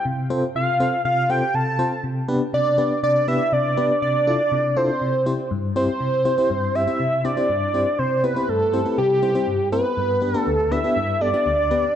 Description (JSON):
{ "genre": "pop", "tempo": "121 BPM", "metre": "4/4", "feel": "straight", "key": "C major", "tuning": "A4 = 441 Hz", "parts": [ { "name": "wide unison lead", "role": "melody", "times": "0.0-12.0 s", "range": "G4 to A5", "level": "-20 LUFS", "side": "right 1 dB", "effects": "tape echo" }, { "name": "FM electric piano with tremolo", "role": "accompaniment", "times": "0.1-11.8 s", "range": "D2 to D5", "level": "-23 LUFS", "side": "left 1 dB", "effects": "none" } ], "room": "wet concert hall reverb, RT60 1.9 s", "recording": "dark, warm production", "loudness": "-18 LUFS", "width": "side -9 dB against mid", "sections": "0.0-6.0 A section; 6.0-12.0 B section", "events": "none", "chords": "0.1 F/C; 2.0 G/C; 4.0 Dmadd9/C; 5.0 C; 10.0 G" }